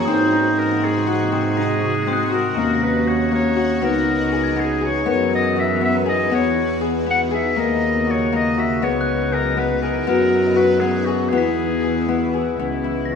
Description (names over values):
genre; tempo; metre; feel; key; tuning
contemporary instrumental, chamber music in an uneven meter; 240 BPM (eighths); 5/8; straight; C# dorian; A4 = 441 Hz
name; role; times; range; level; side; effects
vibraphone with soft mallets; second line; 0.0-13.2 s; C#4 to A#4; -23 LUFS; left 1 dB; none
shimmering ambient pad; sustained chords; 0.0-13.2 s; B#2 to F#4; -28 LUFS; left 1 dB; chorus, built-in reverb, phaser
Celtic harp; arpeggios; 0.0-13.2 s; A#3 to G#4; -22 LUFS; left 8 dB; none
clear double bass; bass; 0.0-13.2 s; C#2 to G#2; -24 LUFS; right 5 dB; none
glockenspiel with soft plastic mallets; texture; 0.0-5.3, 9.0-13.2 s; A#5 to B6; -30 LUFS; left 2 dB; none
bright clarinet; melody; 0.1-13.2 s; E4 to F#5; -23 LUFS; left 2 dB; none
room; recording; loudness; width
wet recital hall reverb, RT60 1.5 s; studio reverb; -17 LUFS; side -6 dB against mid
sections
0.0-2.6 A section; 2.6-12.6 B section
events
none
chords
0.1 G#7; 2.6 D#m7; 3.8 C#m9; 5.1 F#7sus4; 6.3 Emaj7; 7.6 D#m7; 8.8 C#m9; 10.1 F#7sus4; 11.3 E; 12.6 C#m7